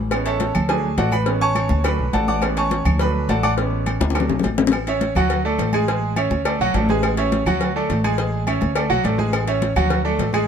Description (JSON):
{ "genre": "latin, salsa", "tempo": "208 BPM", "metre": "4/4", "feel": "straight", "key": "A major", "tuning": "A4 = 439 Hz", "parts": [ { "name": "upright bass", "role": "bass", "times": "0.0-10.5 s", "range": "A1 to D2", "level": "-22 LUFS", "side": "equal", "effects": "none" }, { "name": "bright baby grand piano", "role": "accompaniment", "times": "0.1-10.5 s", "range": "F#3 to D6", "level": "-21 LUFS", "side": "right 3 dB", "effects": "none" }, { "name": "agogo bells and timbales", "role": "percussion", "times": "0.1-10.5 s", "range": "none", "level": "-30 LUFS", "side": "right 5 dB", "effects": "none" }, { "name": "claves", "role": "percussion", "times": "0.1-10.5 s", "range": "none", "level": "-34 LUFS", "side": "left 8 dB", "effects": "none" }, { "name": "congas", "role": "percussion", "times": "0.1-10.5 s", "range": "none", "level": "-26 LUFS", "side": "left 2 dB", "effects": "none" }, { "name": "cowbell and bongos", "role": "percussion", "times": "0.1-10.3 s", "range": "none", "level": "-25 LUFS", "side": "left 7 dB", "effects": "none" } ], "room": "light reverb", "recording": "none", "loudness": "-17 LUFS", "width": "side -7 dB against mid", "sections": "0.0-4.7 A section; 4.7-10.5 B section", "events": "grand piano solo 0.0-4.7; drum fill 4.0-4.7", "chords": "0.1 Amaj7; 0.7 D; 1.3 Amaj7; 1.8 D; 2.4 Amaj7; 3.0 D; 3.6 Amaj7; 4.2 D; 4.7 A; 5.3 D; 5.9 Amaj7; 6.5 D; 7.0 Amaj7; 7.6 D; 8.2 Amaj7; 8.8 D; 9.3 Amaj7; 9.9 D", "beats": "| 0.12 0.41 0.69 0.98 | 1.27 1.56 1.85 2.14 | 2.43 2.71 3.00 3.29 | 3.58 3.87 4.16 4.44 | 4.73 5.02 5.31 5.59 | 5.88 6.17 6.46 6.75 | 7.03 7.32 7.61 7.89 | 8.18 8.47 8.76 9.04 | 9.33 9.62 9.91 10.19" }